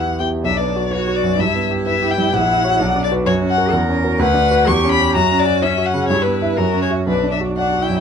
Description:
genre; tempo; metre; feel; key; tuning
quick classical-period movement for piano trio; 127 BPM; 2/4; rubato; B minor; A4 = 439 Hz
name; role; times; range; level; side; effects
rich violin; melody; 0.0-8.0 s; A#4 to C#6; -18 LUFS; left 6 dB; none
clear concert grand piano; accompaniment; 0.0-8.0 s; A#1 to E5; -18 LUFS; right 1 dB; none
rich cello; second line; 0.4-8.0 s; C#4 to B4; -23 LUFS; right 4 dB; none
room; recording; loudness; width
moderate studio reverb, RT60 0.5 s; dark, warm production; -14 LUFS; side -7 dB against mid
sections
0.4-8.0 A section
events
none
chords
0.4 Bm; 1.4 Em/G; 2.3 F#7/A#; 2.8 Bm; 3.3 F#; 3.7 F#7/E; 4.2 Bm/D; 4.7 C#m7b5/E; 5.1 F#5; 6.1 Em/G; 6.6 F#7; 7.1 Bm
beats
| 0.44 0.92 | 1.39 1.86 | 2.33 2.80 | 3.26 3.73 | 4.20 4.67 | 5.14 5.62 | 6.10 6.58 | 7.08 7.57

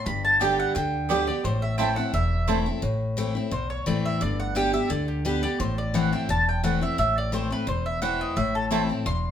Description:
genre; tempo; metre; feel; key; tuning
bluegrass; 173 BPM; 4/4; straight; A dorian; A4 = 442 Hz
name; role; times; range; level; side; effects
mandolin; melody; 0.0-9.3 s; G4 to C6; -27 LUFS; right 1 dB; none
picked steel-string acoustic guitar; accompaniment; 0.0-9.3 s; E2 to G4; -26 LUFS; left 2 dB; none
upright bass; bass; 0.1-9.3 s; E1 to D2; -29 LUFS; equal; none
mandolin; stabs; 0.4-2.6, 8.7-8.8 s; B3 to A5; -28 LUFS; right 6 dB; none
room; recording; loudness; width
moderate large studio reverb, RT60 1.0 s; band playing live in one room; -22 LUFS; side -9 dB against mid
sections
0.0-2.8 A section; 2.8-9.3 A section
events
none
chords
0.1 G; 1.4 Am; 4.2 G; 5.6 Am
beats
| 0.06 0.41 0.75 1.10 | 1.44 1.79 2.14 2.48 | 2.83 3.17 3.52 3.87 | 4.21 4.56 4.91 5.25 | 5.60 5.95 6.29 6.64 | 6.99 7.33 7.68 8.02 | 8.37 8.72 9.06

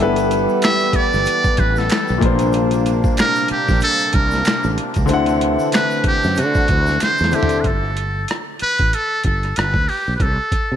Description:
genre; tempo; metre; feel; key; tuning
R&B, neo-soul; 94 BPM; 4/4; swing 57% on 16ths; unclear; A4 = 438 Hz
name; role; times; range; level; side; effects
clear grand piano; accompaniment; 0.0-7.7 s; Bb2 to F#5; -20 LUFS; left 3 dB; none
warm analog pad; sustained chords; 0.0-7.6 s; C3 to G4; -26 LUFS; right 1 dB; chorus
fretless electric bass; bass; 0.0-10.8 s; G1 to D3; -21 LUFS; right 1 dB; none
boom bap sampler-style drum kit; drums; 0.2-10.7 s; finger snaps, hi-hat, kick drum, rim click, snare drum, toms; -20 LUFS; equal; overdrive
tube shaker and finger snaps; percussion; 0.2-7.6 s; none; -35 LUFS; right 2 dB; none
trumpet with metal mute; melody; 0.6-10.8 s; F#4 to E5; -19 LUFS; equal; none
room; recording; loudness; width
moderate lush hall reverb, RT60 2.0 s, studio reverb; bright 1980s-style digital production; -15 LUFS; side -10 dB against mid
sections
0.0-7.6 A section; 7.6-10.8 B section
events
drum fill 7.0-7.6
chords
0.0 G69; 2.2 Bbadd9; 5.1 D9; 7.6 Gsus2; 9.6 G; 10.2 Am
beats
0.62 1.26 1.90 | 2.54 3.17 3.81 4.45 | 5.09 5.73 6.37 7.00 | 7.64 8.28 8.92 9.56 | 10.20

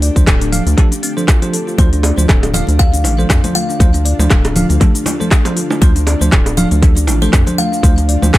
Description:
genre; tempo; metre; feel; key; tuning
afro house; 119 BPM; 4/4; swing 56% on 16ths; D minor pentatonic; A4 = 440 Hz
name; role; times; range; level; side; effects
ethereal airy pad; sustained chords; 0.0-8.4 s; D3 to G4; -26 LUFS; left 2 dB; ensemble chorus, built-in reverb, sidechain pumping
kalimba; arpeggios; 0.0-8.4 s; C4 to D5; -22 LUFS; left 2 dB; sidechain pumping, tape echo
round analog bass; bass; 0.0-8.4 s; D1 to F2; -15 LUFS; equal; sidechain pumping
afro-pop drum kit; drums; 0.0-8.4 s; handclaps, hi-hat, rim click, shaker; -20 LUFS; left 1 dB; tape echo
bell-like tine electric piano; stabs; 0.2-8.3 s; F3 to F5; -22 LUFS; right 3 dB; sidechain pumping, tape echo
electronic kick drum; drums; 0.2-8.4 s; none; -11 LUFS; equal; none
kalimba; melody; 1.8-8.4 s; C5 to F5; -24 LUFS; left 2 dB; tape echo
congas; percussion; 1.8-8.3 s; none; -21 LUFS; left 1 dB; tape echo
bongos; percussion; 2.0-8.3 s; none; -22 LUFS; right 3 dB; none
room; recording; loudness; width
studio ambience; echo-heavy mix; -10 LUFS; side -16 dB against mid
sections
0.0-8.4 A section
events
none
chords
0.0 Dm7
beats
0.27 0.78 1.28 | 1.78 2.29 2.79 3.30 | 3.80 4.30 4.81 5.31 | 5.82 6.32 6.83 7.33 | 7.83 8.34

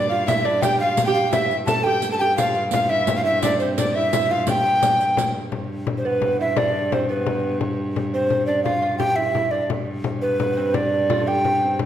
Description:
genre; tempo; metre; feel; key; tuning
medieval dance; 115 BPM (dotted quarters); 6/8; straight; G mixolydian; A4 = 440 Hz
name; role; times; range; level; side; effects
breathy mellow tenor recorder; melody; 0.0-11.8 s; B4 to A5; -20 LUFS; right 1 dB; none
lute; second line; 0.0-11.8 s; B3 to A4; -28 LUFS; right 5 dB; none
warm fiddle; second line; 0.0-5.3 s; C5 to A5; -28 LUFS; left 4 dB; none
rich viola da gamba; drone; 0.0-11.9 s; G2; -28 LUFS; equal; none
frame drum; percussion; 0.3-11.9 s; none; -26 LUFS; left 5 dB; none
riq; percussion; 0.3-5.3 s; none; -31 LUFS; right 4 dB; none
room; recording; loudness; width
wet recital hall reverb, RT60 1.3 s; none; -18 LUFS; side -10 dB against mid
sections
0.0-5.5 A section; 5.5-11.9 B section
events
none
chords
none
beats
| 0.28 0.80 | 1.33 1.85 | 2.38 2.90 | 3.43 3.95 | 4.48 5.00 | 5.52 6.05 | 6.57 7.09 | 7.62 8.14 | 8.66 9.19 | 9.71 10.23 | 10.75 11.28 | 11.80

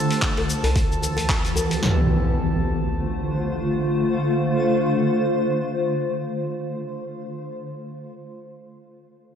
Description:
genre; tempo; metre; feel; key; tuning
organic downtempo; 112 BPM; 4/4; swing 57% on 16ths; D dorian; A4 = 439 Hz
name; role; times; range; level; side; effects
granular cloud pad; sustained chords; 0.0-6.9 s; D2 to C5; -23 LUFS; equal; built-in reverb, sidechain pumping
drifting glass-harmonics texture; texture; 0.0-1.8 s; A4 to A5; -32 LUFS; equal; chorus, built-in reverb
dusty soul sampler-style drum kit; drums; 0.1-1.8 s; handclaps, hi-hat, shaker; -27 LUFS; left 1 dB; studio reverb
deep house drum kit; drums; 0.2-2.0 s; kick drum, snare drum; -23 LUFS; equal; overdrive, studio reverb
djembe; percussion; 0.4-1.8 s; none; -26 LUFS; left 1 dB; none
impact; sound effects; 1.8-6.7 s; none; -24 LUFS; equal; none
room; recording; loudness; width
wet lush hall reverb, RT60 2.2 s; dreamy mix soaked in reverb; -20 LUFS; side -8 dB against mid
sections
0.0-1.8 A section; 1.8-6.1 B section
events
none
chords
0.0 Em/D; 1.8 Dm7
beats
0.22 0.76 1.29 | 1.83 2.36 2.90 3.44 | 3.97 4.51 5.04 5.58

